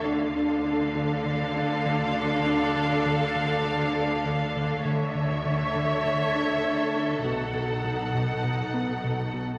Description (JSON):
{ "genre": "cinematic", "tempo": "100 BPM", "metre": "4/4", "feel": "straight", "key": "D harmonic minor", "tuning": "A4 = 443 Hz", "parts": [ { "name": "rich studio violin section", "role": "melody", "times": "0.0-9.4 s", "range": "E5 to F#5", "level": "-33 LUFS", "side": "equal", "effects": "none" }, { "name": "rich studio violin section", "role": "second line", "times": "0.0-9.4 s", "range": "A4", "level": "-35 LUFS", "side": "equal", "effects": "none" }, { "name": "warm studio viola section", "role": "accompaniment", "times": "0.0-9.4 s", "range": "D4 to C#5", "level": "-35 LUFS", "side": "equal", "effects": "none" }, { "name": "smooth synth bass", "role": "riff", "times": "0.1-9.5 s", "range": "B2 to D4", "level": "-31 LUFS", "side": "equal", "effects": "none" }, { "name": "rich studio double bass section", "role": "bass", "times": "0.1-9.4 s", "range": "B1 to D2", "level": "-36 LUFS", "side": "equal", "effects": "none" }, { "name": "warm studio cello section", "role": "bass", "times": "0.1-9.4 s", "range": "B2 to D3", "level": "-36 LUFS", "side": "equal", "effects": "none" } ], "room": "wet scoring stage reverb, RT60 2.0 s", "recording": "vinyl crackle, lossy compression artefacts", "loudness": "-26 LUFS", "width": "mono", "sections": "0.0-9.6 A section", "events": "none", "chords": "0.1 Dm; 4.8 A/D; 7.2 B7" }